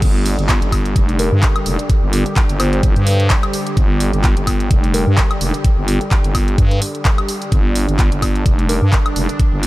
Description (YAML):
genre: bass house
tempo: 128 BPM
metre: 4/4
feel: swing 56% on 16ths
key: unclear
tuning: A4 = 440 Hz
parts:
  - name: sweeping resonant pad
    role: sustained chords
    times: 0.0-9.7 s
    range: D3 to G4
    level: -23 LUFS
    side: equal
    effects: chorus, sidechain pumping
  - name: growling FM bass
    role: bass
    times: 0.0-9.7 s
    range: F1 to G2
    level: -17 LUFS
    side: equal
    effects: tube saturation, sidechain pumping
  - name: electronic kick drum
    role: drums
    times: 0.0-9.5 s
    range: none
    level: -15 LUFS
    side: equal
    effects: none
  - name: house drum kit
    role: drums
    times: 0.0-9.7 s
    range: crash cymbal, handclaps, hi-hat, woodblock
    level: -23 LUFS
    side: equal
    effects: overdrive
  - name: soft struck synth lead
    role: melody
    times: 1.2-5.1, 8.7-8.8 s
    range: Bb4 to C5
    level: -29 LUFS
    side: left 1 dB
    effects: chorus, cassette tape, diffuse ambient delay
room: light reverb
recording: none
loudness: -13 LUFS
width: side -18 dB against mid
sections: 0.0-9.7 A section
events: none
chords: 0.0 G5